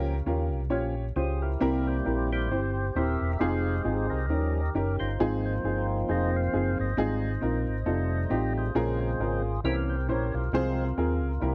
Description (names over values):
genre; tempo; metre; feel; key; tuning
uptempo gospel; 135 BPM; 4/4; swing 57% on 8ths; F minor; A4 = 440 Hz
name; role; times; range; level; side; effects
dark upright piano; accompaniment; 0.0-11.5 s; Ab2 to Db5; -32 LUFS; equal; none
percussive tonewheel organ; sustained chords; 0.0-11.5 s; Db3 to F5; -35 LUFS; equal; slow rotary speaker, overdrive
fingered electric bass; bass; 0.0-11.5 s; Eb1 to Eb2; -32 LUFS; equal; none
room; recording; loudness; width
small room ambience; dry, close 1970s-style studio recording; -28 LUFS; mono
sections
0.0-11.5 A section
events
tonewheel organ solo 0.0-11.5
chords
0.0 Gm7b5; 1.6 C7; 3.4 Fm7; 4.3 Eb7; 5.2 Ab6; 7.0 Fm7/Ab; 7.9 F7; 8.8 Bbm7; 9.6 C7b9; 10.5 Fm/C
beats
0.27 0.72 1.17 | 1.62 2.07 2.52 2.96 | 3.41 3.86 4.30 4.75 | 5.20 5.64 6.09 6.53 | 6.98 7.42 7.87 8.31 | 8.76 9.20 9.64 10.09 | 10.53 10.98 11.42